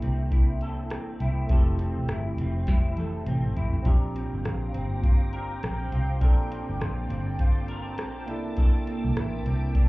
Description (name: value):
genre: indie pop, bedroom pop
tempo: 102 BPM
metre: 4/4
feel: swing 60% on 16ths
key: Bb lydian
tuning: A4 = 442 Hz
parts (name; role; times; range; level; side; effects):
- barky tine electric piano; accompaniment; 0.0-9.9 s; A3 to A4; -36 LUFS; right 3 dB; none
- electric guitar through a small old amp; accompaniment; 0.0-9.9 s; Bb2 to Bb4; -36 LUFS; left 2 dB; ensemble chorus, vibrato effect
- vintage muted fingered electric bass; bass; 0.0-9.9 s; E1 to C2; -28 LUFS; equal; none
- soft vintage rhythm box; drums; 0.0-9.9 s; hi-hat, kick drum, rim click, snare drum, toms; -23 LUFS; equal; none
- ensemble organ-string; sustained chords; 3.9-9.9 s; Bb3 to D6; -38 LUFS; right 1 dB; phaser, ensemble chorus
room: light reverb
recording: heard muffled through a wall, club reverb, EQ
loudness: -24 LUFS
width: side -21 dB against mid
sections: 0.0-9.9 A section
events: drum fill 2.7-3.9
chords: 0.0 C13; 1.5 Fmaj7; 3.9 Bb69; 8.3 C13